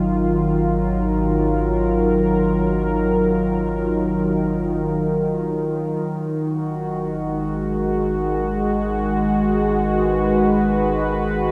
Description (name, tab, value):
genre	ambient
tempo	free time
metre	none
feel	none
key	G# dorian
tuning	A4 = 439 Hz
part	warm analog pad	sustained chords	0.0-11.5 s	D#3 to B4	-21 LUFS	equal	chorus
part	round analog bass	bass	0.0-11.5 s	G#1	-31 LUFS	equal	none
room	wet huge ambient reverb, RT60 8.1 s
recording	in a vast, echoing space, cassette tape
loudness	-20 LUFS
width	mono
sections	0.0-11.5 A section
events	fade-out on analog synth bass 0.0-11.5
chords	0.0 D#madd9/G#; 6.0 G#m7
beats	free time